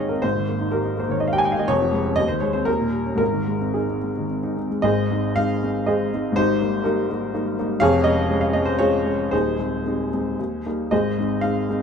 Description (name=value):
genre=classical, romantic character piece for solo piano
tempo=107-128 BPM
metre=3/4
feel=rubato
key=Ab major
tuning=A4 = 436 Hz
part: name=warm upright piano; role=solo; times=0.0-11.8 s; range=Eb1 to Ab5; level=-19 LUFS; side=equal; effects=none
room=light reverb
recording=minimal, uncompressed stereo recording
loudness=-19 LUFS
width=side -6 dB against mid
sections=0.0-4.9 A section; 4.9-11.8 B section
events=none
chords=0.2 Eb/Ab; 1.7 Db/F; 2.2 Ab/Eb; 2.7 Eb7; 3.2 Ab; 6.4 Eb/Ab; 7.8 Db/F; 9.3 Ab/Eb; 10.4 Eb; 10.9 Ab